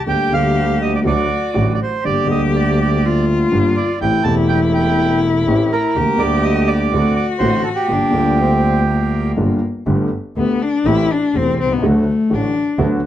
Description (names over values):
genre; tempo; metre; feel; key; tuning
tango; 123 BPM; 4/4; rubato; G minor, G major from 9.9 s; A4 = 439 Hz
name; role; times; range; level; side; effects
bandoneon; melody; 0.0-9.3 s; G4 to A5; -20 LUFS; right 4 dB; none
warm cello; second line; 0.0-12.8 s; A3 to G4; -19 LUFS; left 4 dB; none
warm concert grand piano; accompaniment; 0.1-13.0 s; E1 to G4; -19 LUFS; equal; none
warm double bass; bass; 0.1-13.0 s; E1 to D2; -20 LUFS; right 1 dB; none
room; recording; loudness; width
moderate studio reverb, RT60 0.8 s; dark, warm production; -14 LUFS; side -12 dB against mid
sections
0.0-9.9 A section; 9.9-13.1 B section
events
cello solo 9.9-13.1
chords
0.1 Gm/D; 1.1 D; 2.0 Gm; 4.0 Am7; 6.0 Gm/D; 6.9 D7; 7.9 Gm7; 9.9 Gadd9; 10.8 Am7; 11.8 D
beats
| 0.07 0.56 1.05 1.55 | 2.05 2.54 3.03 3.52 | 4.01 4.50 4.99 5.47 | 5.96 6.44 6.93 7.41 | 7.90 8.39 8.88 9.37 | 9.87 10.36 10.85 11.33 | 11.82 12.30 12.79